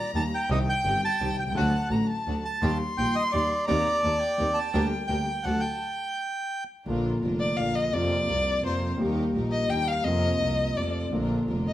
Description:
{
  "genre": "tango",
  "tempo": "170 BPM",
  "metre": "3/4",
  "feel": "rubato",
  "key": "Bb major from 6.9 s",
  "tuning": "A4 = 440 Hz",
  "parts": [
    { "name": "bandoneon", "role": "melody", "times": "0.0-6.6 s", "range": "D5 to A5", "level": "-28 LUFS", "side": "right 1 dB", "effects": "none" },
    { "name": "rich violin", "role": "second line", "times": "0.0-11.7 s", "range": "C5 to C6", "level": "-30 LUFS", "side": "left 2 dB", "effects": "none" },
    { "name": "rich symphonic string section", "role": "stabs", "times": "0.1-11.7 s", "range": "A3 to Bb4", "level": "-40 LUFS", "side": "equal", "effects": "none" },
    { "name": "clear double bass", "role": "bass", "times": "0.1-11.7 s", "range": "F1 to F2", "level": "-30 LUFS", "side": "right 1 dB", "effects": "none" },
    { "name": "warm concert grand piano", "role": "accompaniment", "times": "0.2-11.7 s", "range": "F1 to G4", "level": "-29 LUFS", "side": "equal", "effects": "none" }
  ],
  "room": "moderate large studio reverb, RT60 1.2 s",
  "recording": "none",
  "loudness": "-24 LUFS",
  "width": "side -13 dB against mid",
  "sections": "0.0-6.9 A section; 6.9-11.7 B section",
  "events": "stop 5.8-6.9; violin solo 6.9-11.7",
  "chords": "0.5 Cm; 1.6 D; 2.6 Eb; 3.7 Cm7/Eb; 4.7 Gm/D; 5.5 D; 5.8 N.C.; 6.9 Bb; 7.9 Fsus4; 9.0 Eb; 10.1 Fsus4; 10.8 F; 11.1 Bb"
}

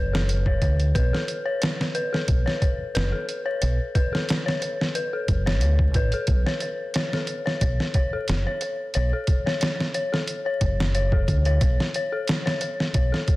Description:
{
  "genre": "trip hop",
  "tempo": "90 BPM",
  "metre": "4/4",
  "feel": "straight",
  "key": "unclear",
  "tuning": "A4 = 437 Hz",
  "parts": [
    { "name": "dark detuned synth bell", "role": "arpeggios", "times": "0.0-13.4 s", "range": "A4 to C#5", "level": "-28 LUFS", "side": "left 2 dB", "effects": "chorus, ping-pong delay" },
    { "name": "deep dub fingered electric bass", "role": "bass", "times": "0.0-13.1 s", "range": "F#1 to D2", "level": "-22 LUFS", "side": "equal", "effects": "none" },
    { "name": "trip hop sampler-style drum kit", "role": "drums", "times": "0.1-13.4 s", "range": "hi-hat, kick drum, snare drum", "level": "-24 LUFS", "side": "equal", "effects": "studio reverb" }
  ],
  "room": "light reverb",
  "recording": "dense, heavily limited modern master, vinyl crackle",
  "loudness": "-21 LUFS",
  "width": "side -19 dB against mid",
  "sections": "0.0-13.4 A section",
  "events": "none",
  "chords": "0.0 B7sus2"
}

